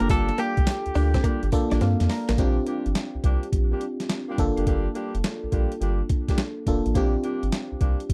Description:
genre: R&B, new jack swing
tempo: 105 BPM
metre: 4/4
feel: swing 67% on 16ths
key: G minor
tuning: A4 = 440 Hz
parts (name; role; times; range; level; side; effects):
- direct-recorded clean electric guitar; melody; 0.0-1.5 s; G4 to A4; -31 LUFS; equal; none
- FM electric piano; accompaniment; 0.0-8.1 s; Bb3 to Bb5; -30 LUFS; equal; chorus
- direct-recorded clean electric guitar; riff; 0.0-2.4 s; G3 to D4; -31 LUFS; equal; lush chorus
- mellow horn section; stabs; 0.0-8.0 s; G3 to G4; -37 LUFS; equal; tube saturation, tape echo
- round analog bass; bass; 0.0-8.1 s; F1 to G2; -27 LUFS; equal; none
- boom bap sampler-style drum kit; drums; 0.0-8.1 s; hi-hat, kick drum, snare drum, tambourine; -27 LUFS; equal; none
room: little or no reverb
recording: dry, close 1970s-style studio recording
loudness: -24 LUFS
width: mono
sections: 0.0-2.4 A section; 2.4-8.1 B section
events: FM electric piano fill 1.2-2.4; drum fill 1.8-2.4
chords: 0.0 Gm7; 2.4 Bb6; 4.4 Gm7; 7.0 Bb6

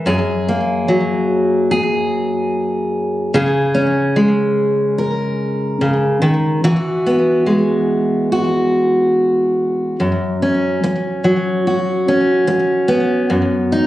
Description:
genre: folk, solo fingerstyle acoustic guitar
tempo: 73 BPM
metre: 4/4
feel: straight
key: F# mixolydian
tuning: A4 = 440 Hz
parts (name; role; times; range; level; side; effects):
- fingerpicked steel-string acoustic guitar; solo; 0.0-13.9 s; F#2 to A#4; -14 LUFS; equal; slapback echo
room: light reverb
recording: recorded on a phone in the room, club reverb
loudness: -14 LUFS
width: side -15 dB against mid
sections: 0.0-10.0 A section; 10.0-13.9 B section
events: none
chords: 0.1 F#add9; 3.3 C#sus2; 6.6 Eadd9; 10.0 F#sus4; 13.3 B/F#

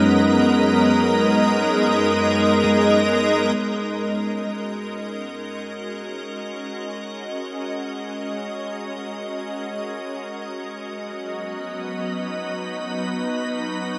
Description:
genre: ambient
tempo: free time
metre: none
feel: none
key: F# major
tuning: A4 = 439 Hz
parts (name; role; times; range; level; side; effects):
- soft additive organ-like pad; sustained chords; 0.0-14.0 s; F#2 to D#5; -23 LUFS; equal; ensemble chorus, built-in reverb
- handpan; arpeggios; 0.0-4.2 s; G#3 to F#5; -30 LUFS; equal; delay
- analog drone; drone; 0.0-3.7 s; G#3 to C#4; -26 LUFS; equal; chorus
room: wet huge ambient reverb, RT60 7.2 s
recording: none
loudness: -23 LUFS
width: mono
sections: 0.0-3.6 A section; 3.6-14.0 B section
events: fade-in on ambient pad 3.6-14.0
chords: 0.0 G#madd9/F#; 3.6 F#69; 10.8 B/F#

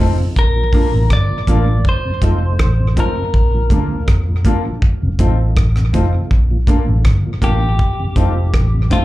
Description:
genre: roots reggae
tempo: 81 BPM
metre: 4/4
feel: straight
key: Bb major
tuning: A4 = 440 Hz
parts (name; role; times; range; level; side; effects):
- mellow electric guitar; accompaniment; 0.0-9.0 s; A3 to F4; -26 LUFS; right 6 dB; tape echo, slapback echo
- mellow tonewheel organ; accompaniment; 0.0-9.0 s; F2 to Eb4; -24 LUFS; left 1 dB; overdrive, chorus vibrato, slow rotary speaker, tape echo, slapback echo
- clear upright piano; stabs; 0.0-9.0 s; Bb3 to A4; -25 LUFS; left 6 dB; plate reverb, slapback echo
- vintage muted fingered electric bass; bass; 0.0-8.9 s; F1 to F2; -15 LUFS; equal; none
- clean electric guitar; melody; 0.4-9.0 s; F4 to D5; -22 LUFS; left 1 dB; tape echo, plate reverb, slapback echo
- damped 70s drum kit; drums; 0.4-9.0 s; hi-hat, kick drum, rim click; -16 LUFS; equal; none
room: little or no reverb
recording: live gig heard through the venue's PA, club reverb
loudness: -13 LUFS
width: side -17 dB against mid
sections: 0.0-9.0 A section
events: none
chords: 0.4 Bbmaj7; 1.9 F7; 3.3 Bbmaj7; 4.8 F7; 6.3 Bbmaj7; 7.8 F7

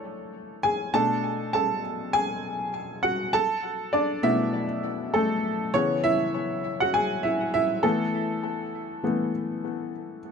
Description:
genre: pop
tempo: 100 BPM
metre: 4/4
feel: swing 56% on 16ths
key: unclear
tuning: A4 = 439 Hz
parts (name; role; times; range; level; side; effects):
- clear upright piano; solo; 0.0-10.3 s; B2 to A5; -24 LUFS; equal; ping-pong delay
room: moderate studio ambience, RT60 0.5 s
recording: none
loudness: -24 LUFS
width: side -6 dB against mid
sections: 0.0-10.3 A section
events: upright piano solo 0.0-10.3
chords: 0.0 Eadd11; 0.9 Bm7; 3.3 Esus4; 5.7 C#m7; 7.8 Esus4

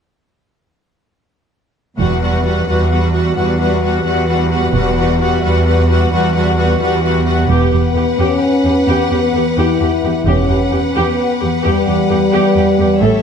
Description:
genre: cinematic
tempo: 87 BPM (dotted quarters)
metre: 12/8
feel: straight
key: E dorian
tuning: A4 = 438 Hz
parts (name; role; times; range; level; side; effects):
- clear symphonic violin section; second line; 2.0-13.2 s; B4 to F#5; -19 LUFS; left 5 dB; none
- rich symphonic viola section; accompaniment; 2.0-13.2 s; G3 to A4; -19 LUFS; right 1 dB; none
- rich symphonic cello section; bass; 2.0-13.1 s; E2 to A2; -16 LUFS; right 2 dB; none
- warm symphonic double bass section; bass; 2.0-13.2 s; E1 to A1; -18 LUFS; right 3 dB; none
- dark French horn section; sustained chords; 7.5-13.2 s; G3 to E4; -15 LUFS; left 2 dB; none
room: wet scoring stage reverb, RT60 1.7 s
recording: dark, warm production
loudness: -12 LUFS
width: side -7 dB against mid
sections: 2.0-7.5 A section; 7.5-13.2 B section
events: none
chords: 2.0 Emadd9

